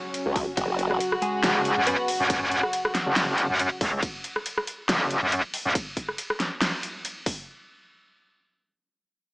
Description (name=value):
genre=heavy wobble dubstep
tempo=139 BPM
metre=4/4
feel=swing 55% on 16ths, half-time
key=unclear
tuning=A4 = 439 Hz
part: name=direct-recorded clean electric guitar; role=melody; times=0.0-2.1 s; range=F#3 to B4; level=-30 LUFS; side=equal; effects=digital delay
part: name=warm studio string section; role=sustained chords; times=0.0-4.0 s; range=C#3 to F#4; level=-30 LUFS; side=equal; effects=sidechain pumping
part: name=dubstep drum kit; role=drums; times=0.1-7.4 s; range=hi-hat, ride cymbal, rim click, snare drum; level=-28 LUFS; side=equal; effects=small room reverb
part: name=formant-sweep wobble bass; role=bass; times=0.3-1.0 s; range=F#1 to C#2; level=-26 LUFS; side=equal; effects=chorus, overdrive
part: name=electronic kick drum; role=drums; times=0.4-7.4 s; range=none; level=-30 LUFS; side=equal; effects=small room reverb
part: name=metallic wobble bass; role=bass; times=1.4-5.7 s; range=F#1 to F#2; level=-23 LUFS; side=equal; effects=chorus, overdrive
room=light reverb, digital ambience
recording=small speaker sound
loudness=-23 LUFS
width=side -33 dB against mid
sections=0.0-7.5 A section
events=drop 0.0-7.5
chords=0.0 F#5